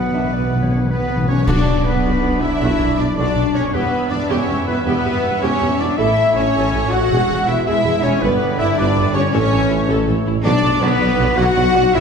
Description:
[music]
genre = cinematic, heroic adventure film score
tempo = 107 BPM (dotted quarters)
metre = 12/8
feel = straight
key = B minor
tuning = A4 = 440 Hz
[part]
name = rich symphonic violin section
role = melody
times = 0.0-12.0 s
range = B4 to F#5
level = -30 LUFS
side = left 3 dB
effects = none
[part]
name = clear clarinet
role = second line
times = 0.0-12.0 s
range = B4 to F#5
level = -26 LUFS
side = equal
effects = none
[part]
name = silver concert flute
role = second line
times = 0.0-1.3 s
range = F#5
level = -34 LUFS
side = left 5 dB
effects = none
[part]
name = warm oboe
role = second line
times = 0.0-12.0 s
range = B4 to F#5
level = -27 LUFS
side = right 1 dB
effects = none
[part]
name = warm symphonic violin section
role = second line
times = 0.0-12.0 s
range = B4 to F#5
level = -29 LUFS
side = left 2 dB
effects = none
[part]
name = warm symphonic viola section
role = accompaniment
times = 0.0-12.0 s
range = B3 to E5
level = -26 LUFS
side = right 1 dB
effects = none
[part]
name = warm French horn section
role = sustained chords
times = 0.0-12.0 s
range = B3 to F#4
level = -20 LUFS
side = left 4 dB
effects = none
[part]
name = rich symphonic cello section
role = bass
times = 0.0-12.0 s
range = B2 to F#4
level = -25 LUFS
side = right 3 dB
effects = none
[part]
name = rich symphonic double bass section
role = bass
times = 0.0-12.0 s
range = E1 to E2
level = -22 LUFS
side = right 1 dB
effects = none
[part]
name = timpani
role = percussion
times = 0.0-2.0, 10.5-11.0 s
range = B2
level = -22 LUFS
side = equal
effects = none
[part]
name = bright trombone section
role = sustained chords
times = 0.1-12.0 s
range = F#2 to D4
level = -25 LUFS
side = right 2 dB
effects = none
[part]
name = warm tuba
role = bass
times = 1.5-12.0 s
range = E1 to B1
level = -24 LUFS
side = right 1 dB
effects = none
[part]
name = clash cymbals and concert bass drum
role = percussion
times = 1.5-2.2 s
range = none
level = -24 LUFS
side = equal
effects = none
[sound]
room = wet scoring stage reverb, RT60 1.7 s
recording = heard from further back in the room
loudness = -14 LUFS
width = side -6 dB against mid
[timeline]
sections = 0.0-1.5 A section; 1.5-12.0 B section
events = timpani fill 0.0-1.5; band accent 1.5-1.9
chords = 0.0 Bm; 3.7 Em; 6.0 A; 7.1 E; 8.2 G; 9.3 A; 10.5 Bm

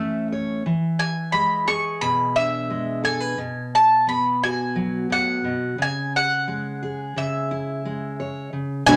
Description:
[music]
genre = indie folk with a building arrangement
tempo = 88 BPM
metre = 4/4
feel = straight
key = unclear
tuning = A4 = 439 Hz
[part]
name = mandolin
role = melody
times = 0.0-9.0 s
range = E5 to C#6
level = -23 LUFS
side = equal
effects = none
[part]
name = fingerpicked steel-string acoustic guitar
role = accompaniment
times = 0.0-8.8 s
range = A2 to C#5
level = -28 LUFS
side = equal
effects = none
[part]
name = warm trombone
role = second line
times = 8.9-9.0 s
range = G#3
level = -26 LUFS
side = equal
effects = none
[part]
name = picked twelve-string acoustic guitar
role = accompaniment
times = 8.9-9.0 s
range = B2 to C#5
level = -22 LUFS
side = equal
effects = none
[part]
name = warm upright piano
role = arpeggios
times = 8.9-9.0 s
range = D3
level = -19 LUFS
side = equal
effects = none
[part]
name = fingered electric bass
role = bass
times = 8.9-9.0 s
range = B1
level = -27 LUFS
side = equal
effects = none
[part]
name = egg shaker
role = percussion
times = 8.9-9.0 s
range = none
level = -39 LUFS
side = equal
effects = none
[sound]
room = moderate club reverb, RT60 0.7 s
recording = none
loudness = -23 LUFS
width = mono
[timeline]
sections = 0.0-8.9 A section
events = none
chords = 0.0 A; 0.7 E7; 3.4 B5; 5.8 C#m

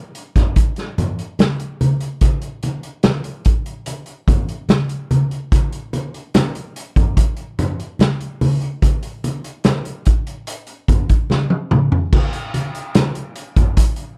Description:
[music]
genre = soul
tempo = 73 BPM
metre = 4/4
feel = straight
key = none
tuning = none
[part]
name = vintage drum kit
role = drums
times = 0.1-14.2 s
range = crash cymbal, hi-hat, kick drum, snare drum, toms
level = -18 LUFS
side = equal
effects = none
[part]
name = congas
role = percussion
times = 0.4-13.8 s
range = none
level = -22 LUFS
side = equal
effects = none
[sound]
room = light reverb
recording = none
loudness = -19 LUFS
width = mono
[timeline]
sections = 0.0-12.1 A section; 12.1-14.2 B section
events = drum fill 11.3-12.1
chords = none

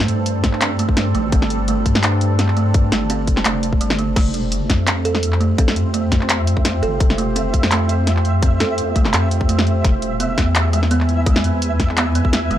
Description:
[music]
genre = half-time drum and bass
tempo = 169 BPM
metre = 4/4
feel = swing 54% on 16ths, half-time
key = unclear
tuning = A4 = 441 Hz
[part]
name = deep dark ambient pad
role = sustained chords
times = 0.0-12.6 s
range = G3 to G#5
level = -26 LUFS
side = left 1 dB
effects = chorus, built-in reverb, vintage 12-bit sampler grit, sidechain pumping
[part]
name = buzzing kalimba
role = arpeggios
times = 0.0-12.6 s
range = G3 to A4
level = -22 LUFS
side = right 5 dB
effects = tape echo
[part]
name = deep soft wobble bass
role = bass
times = 0.0-12.6 s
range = E1 to G2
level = -19 LUFS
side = left 1 dB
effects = chorus
[part]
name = drum and bass drum kit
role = drums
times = 0.0-12.6 s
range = crash cymbal, handclaps, hi-hat, snare drum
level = -21 LUFS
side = left 1 dB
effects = none
[part]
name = electronic kick drum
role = drums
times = 0.4-12.3 s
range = none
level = -17 LUFS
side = left 1 dB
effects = none
[part]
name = flickering grainy texture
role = texture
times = 4.8-12.6 s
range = E5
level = -28 LUFS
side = right 2 dB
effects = built-in reverb
[sound]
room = digital ambience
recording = dry, gritty hardware recording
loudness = -15 LUFS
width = side -11 dB against mid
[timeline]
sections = 0.0-12.6 A section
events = none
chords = 0.0 Gsus4; 4.2 Fsus2; 9.8 E

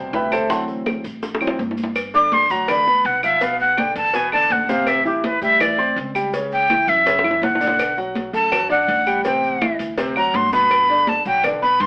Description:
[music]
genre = Afro-Cuban jazz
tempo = 164 BPM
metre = 4/4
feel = straight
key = G major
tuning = A4 = 443 Hz
[part]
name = clear concert grand piano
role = accompaniment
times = 0.0-11.9 s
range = B2 to D6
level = -23 LUFS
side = equal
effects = none
[part]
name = upright bass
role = bass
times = 0.0-11.9 s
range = G1 to A2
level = -32 LUFS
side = equal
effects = none
[part]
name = bongos and cowbell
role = percussion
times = 0.1-11.9 s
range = none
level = -27 LUFS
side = left 1 dB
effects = none
[part]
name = congas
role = percussion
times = 0.1-11.9 s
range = none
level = -29 LUFS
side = equal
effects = none
[part]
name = maracas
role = percussion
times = 0.1-11.9 s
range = none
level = -40 LUFS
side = right 1 dB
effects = none
[part]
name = claves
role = percussion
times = 0.3-11.6 s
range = none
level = -26 LUFS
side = right 1 dB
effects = none
[part]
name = breathy bright jazz flute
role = melody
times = 2.1-11.9 s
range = G4 to D6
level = -16 LUFS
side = equal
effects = none
[sound]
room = moderate studio reverb, RT60 0.7 s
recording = AM radio sound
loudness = -16 LUFS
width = side -27 dB against mid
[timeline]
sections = 0.0-2.0 A section; 2.0-11.9 A section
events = grand piano solo 0.0-2.0; drum fill 1.2-2.0, 7.1-7.8; flute solo 2.0-11.9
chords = 0.0 Am9; 0.5 D7; 2.0 Gmaj7; 3.4 Bmadd11; 4.1 E5; 4.9 Am7; 6.3 C#dim; 7.1 F#5; 7.8 Bm7; 9.3 Am7; 10.0 Gmaj7

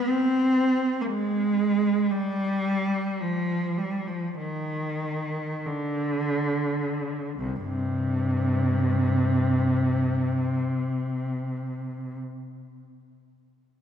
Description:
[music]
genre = classical, free, expressive piece for unaccompanied cello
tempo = 28-63 BPM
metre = 4/4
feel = rubato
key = C minor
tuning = A4 = 439 Hz
[part]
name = rich cello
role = solo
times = 0.0-12.2 s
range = C2 to C4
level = -24 LUFS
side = equal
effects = none
[sound]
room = wet church reverb, RT60 2.7 s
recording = minimal, uncompressed stereo recording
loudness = -24 LUFS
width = side -8 dB against mid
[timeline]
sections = 0.0-7.4 A section; 7.4-13.0 B section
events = slowing down 0.0-7.4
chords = none

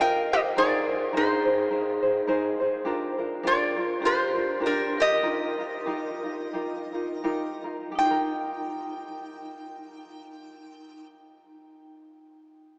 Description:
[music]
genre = Hawaiian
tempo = 79-105 BPM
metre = 4/4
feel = swing 57% on 8ths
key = Eb major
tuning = A4 = 440 Hz
[part]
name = metal-body resonator slide guitar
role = melody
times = 0.0-11.1 s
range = D4 to G5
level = -29 LUFS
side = equal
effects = none
[part]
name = vibraphone with hard mallets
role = second line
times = 0.0-11.0 s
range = Eb4 to Eb5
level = -36 LUFS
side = equal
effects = none
[part]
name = tenor ukulele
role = accompaniment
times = 0.0-11.6 s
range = D4 to F5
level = -32 LUFS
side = equal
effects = none
[sound]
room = wet cathedral reverb, RT60 6.9 s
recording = recorded in a church or concert hall, small speaker sound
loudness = -26 LUFS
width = mono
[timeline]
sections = 0.0-8.0 A section; 8.0-11.0 B section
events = slowing down 2.9-8.0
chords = 0.0 Bbsus4; 0.6 Abadd9; 2.9 Bb6; 5.2 Ebadd9

